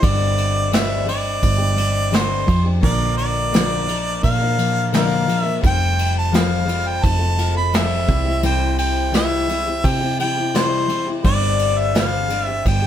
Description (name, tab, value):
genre	folk rock and heartland rock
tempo	86 BPM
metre	4/4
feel	straight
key	unclear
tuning	A4 = 443 Hz
part	clear harmonica	melody	0.0-12.9 s	C5 to B5	-22 LUFS	right 1 dB	none
part	picked steel-string acoustic guitar	accompaniment	0.0-12.9 s	G2 to Bb4	-23 LUFS	left 5 dB	none
part	hollow-body short-scale picked electric bass	bass	0.0-12.9 s	F1 to C3	-21 LUFS	right 1 dB	none
part	soft brush drum kit	drums	0.0-12.8 s	crash cymbal, kick drum, ride cymbal, snare drum	-22 LUFS	equal	none
room	moderate studio reverb, RT60 0.7 s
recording	band playing live in one room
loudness	-16 LUFS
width	side -10 dB against mid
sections	0.0-12.9 A section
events	none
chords	0.0 Gsus4; 2.8 Bb; 5.6 Fadd9; 8.1 C; 11.3 Gsus4